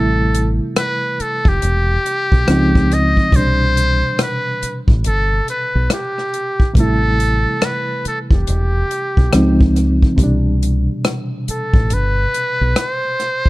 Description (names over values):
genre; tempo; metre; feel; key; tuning
R&B, neo-soul; 70 BPM; 4/4; swing 62% on 16ths; C major; A4 = 441 Hz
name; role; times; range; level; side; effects
trumpet with metal mute; melody; 0.0-13.5 s; G4 to Eb5; -19 LUFS; equal; slapback echo
bright reed electric piano; accompaniment; 0.0-13.5 s; B2 to E4; -20 LUFS; equal; fast tremolo
deep dub fingered electric bass; bass; 0.0-12.7 s; E1 to Db2; -17 LUFS; equal; none
warm soul drum kit; drums; 0.3-13.5 s; hi-hat, kick drum, rim click; -15 LUFS; equal; none
room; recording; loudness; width
small room ambience; dark, warm production; -14 LUFS; side -19 dB against mid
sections
0.0-13.5 A section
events
none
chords
0.0 Am7; 2.5 Dbmaj9; 3.3 Cmaj9; 6.8 Am7; 9.3 Dbmaj9; 10.2 Cmaj9